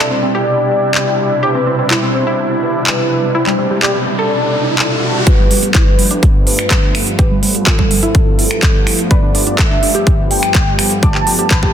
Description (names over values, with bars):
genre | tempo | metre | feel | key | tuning
progressive house | 125 BPM | 4/4 | straight | G mixolydian | A4 = 443 Hz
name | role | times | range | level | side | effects
warm velvety synth lead | melody | 0.0-11.7 s | A4 to A5 | -19 LUFS | left 1 dB | chorus, sidechain pumping, tape echo
filtered supersaw swell | sustained chords | 0.0-11.7 s | G2 to E4 | -19 LUFS | right 1 dB | vintage 12-bit sampler grit, sidechain pumping, low-pass filter
tight sequenced synth | arpeggios | 0.0-11.7 s | G3 to D5 | -19 LUFS | equal | chorus, sidechain pumping, tape echo
big-room dance drum kit | drums | 0.9-11.6 s | finger snaps, handclaps, hi-hat | -17 LUFS | equal | none
riser | sound effects | 2.7-5.3 s | none | -22 LUFS | equal | none
electronic kick drum | drums | 5.3-11.7 s | none | -12 LUFS | equal | none
room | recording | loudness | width
moderate lush hall reverb, RT60 1.7 s, digital ambience | dense, heavily limited modern master | -11 LUFS | side -9 dB against mid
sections
0.0-5.3 A section; 5.3-11.7 B section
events
filter sweep on supersaw synth 0.0-5.3; riser 2.7-5.3; build-up 5.3-11.7; filter sweep on synth arpeggio sound 5.3-11.7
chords
0.0 Cmaj7; 5.3 G7